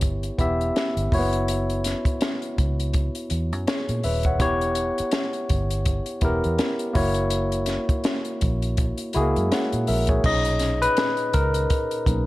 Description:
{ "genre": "lush 1970s-style soul", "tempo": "82 BPM", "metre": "4/4", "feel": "swing 58% on 16ths", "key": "B major", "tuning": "A4 = 440 Hz", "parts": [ { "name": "barky tine electric piano", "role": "accompaniment", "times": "0.0-12.3 s", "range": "A#2 to F#5", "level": "-24 LUFS", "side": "left 1 dB", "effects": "overdrive" }, { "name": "vintage muted fingered electric bass", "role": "bass", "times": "0.0-12.3 s", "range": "D#1 to A#2", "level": "-25 LUFS", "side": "equal", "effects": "none" }, { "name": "compact cocktail drum kit", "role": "drums", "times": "0.0-12.3 s", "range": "crash cymbal, hi-hat, kick drum, snare drum", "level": "-25 LUFS", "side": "equal", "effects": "none" } ], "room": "small room ambience", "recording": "none", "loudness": "-21 LUFS", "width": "side -18 dB against mid", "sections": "0.0-10.2 A section; 10.2-12.3 B section", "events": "tine electric piano solo 10.2-12.3", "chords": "0.0 Em6; 1.1 F#7sus4; 4.4 Em6; 7.0 F#7; 10.2 Bmaj7" }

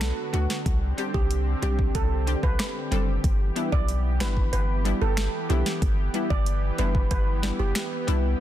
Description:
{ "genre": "dancehall", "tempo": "93 BPM", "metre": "4/4", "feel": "straight", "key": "G major", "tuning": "A4 = 443 Hz", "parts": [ { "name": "lush unison pad", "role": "sustained chords", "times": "0.0-8.4 s", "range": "D3 to G4", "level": "-33 LUFS", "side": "equal", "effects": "chorus, sidechain pumping" }, { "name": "punchy sub bass", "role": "bass", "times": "0.0-8.3 s", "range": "F#1 to D2", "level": "-25 LUFS", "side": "equal", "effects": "none" }, { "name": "afro-pop drum kit", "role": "drums", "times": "0.0-8.2 s", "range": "finger snaps, hi-hat, kick drum, rim click, snare drum", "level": "-26 LUFS", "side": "equal", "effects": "soft clipping on snare" }, { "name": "steel pan", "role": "melody", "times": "0.3-7.7 s", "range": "F#4 to D5", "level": "-33 LUFS", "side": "right 5 dB", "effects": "ping-pong delay" }, { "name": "analog pluck", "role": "accompaniment", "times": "0.3-8.2 s", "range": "G3 to A4", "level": "-32 LUFS", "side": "left 2 dB", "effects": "chorus" }, { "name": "hollow clarinet-like synth lead", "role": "second line", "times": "7.8-8.4 s", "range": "B4", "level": "-35 LUFS", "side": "equal", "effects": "chorus, phaser, ping-pong delay" } ], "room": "digital ambience", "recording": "dense, heavily limited modern master", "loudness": "-22 LUFS", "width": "side -12 dB against mid", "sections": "0.0-8.4 A section", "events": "none", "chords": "0.0 D6; 0.7 Csus2; 3.2 G6" }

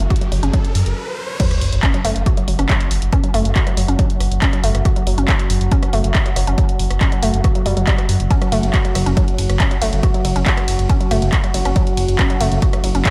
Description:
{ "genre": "driving peak-time techno", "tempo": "139 BPM", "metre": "4/4", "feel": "straight", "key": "unclear", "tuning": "A4 = 440 Hz", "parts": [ { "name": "dark detuned saw bass", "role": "bass", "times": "0.0-13.0 s", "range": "F#1 to F#2", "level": "-21 LUFS", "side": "equal", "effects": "sidechain pumping" }, { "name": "analog drone", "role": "drone", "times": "0.0-13.1 s", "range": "F#3 to F#4", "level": "-29 LUFS", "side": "equal", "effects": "chorus, sidechain pumping" }, { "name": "punchy analog drum machine", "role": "drums", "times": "0.0-13.1 s", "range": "crash cymbal, handclaps, hi-hat, ride cymbal, rim click", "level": "-26 LUFS", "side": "equal", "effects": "sidechain pumping on hats, sidechain pumping on cymbals" }, { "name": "riser and sub drop", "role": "sound effects", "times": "0.0-3.1 s", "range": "none", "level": "-29 LUFS", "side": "equal", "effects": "none" }, { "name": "woody wave-folded pluck", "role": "riff", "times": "0.1-13.1 s", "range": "F#3 to F#4", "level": "-26 LUFS", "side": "equal", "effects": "chorus, tube saturation, sidechain pumping, tape echo" }, { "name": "electronic kick drum", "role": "drums", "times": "0.1-13.1 s", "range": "none", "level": "-19 LUFS", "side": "equal", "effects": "none" } ], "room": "light reverb", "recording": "none", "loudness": "-17 LUFS", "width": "mono", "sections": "0.0-1.4 A section; 1.4-13.1 B section", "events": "riser 0.0-1.4; stop 1.0-1.4; drop 1.4-13.1; impact 1.4-3.1", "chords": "none" }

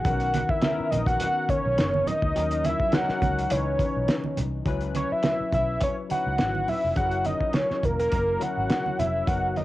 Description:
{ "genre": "lush 1970s-style soul", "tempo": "104 BPM", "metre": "4/4", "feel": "swing 54% on 16ths", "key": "C# dorian", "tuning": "A4 = 440 Hz", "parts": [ { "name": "fat analog lead", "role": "melody", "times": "0.0-9.6 s", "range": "A#4 to F#5", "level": "-25 LUFS", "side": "equal", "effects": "cassette tape" }, { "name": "barky tine electric piano", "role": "accompaniment", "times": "0.0-9.6 s", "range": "D#3 to B4", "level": "-32 LUFS", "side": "left 6 dB", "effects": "overdrive, analog chorus, cassette tape" }, { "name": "cloth-damped thuddy drum kit", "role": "drums", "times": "0.0-9.6 s", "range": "hi-hat, kick drum, snare drum", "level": "-28 LUFS", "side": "equal", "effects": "cassette tape" }, { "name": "vintage muted fingered electric bass", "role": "bass", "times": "0.1-9.6 s", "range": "E1 to D#2", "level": "-30 LUFS", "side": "equal", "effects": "none" }, { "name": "congas", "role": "percussion", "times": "0.1-9.6 s", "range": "none", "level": "-34 LUFS", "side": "right 5 dB", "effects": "none" } ], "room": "light reverb, studio ambience", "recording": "home recording on cassette", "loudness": "-22 LUFS", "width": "side -16 dB against mid", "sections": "0.0-4.7 A section; 4.7-9.6 B section", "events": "none", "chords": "0.1 Bmaj9; 2.4 D#m7; 3.5 C#m9; 4.7 C#m11; 7.0 F#7" }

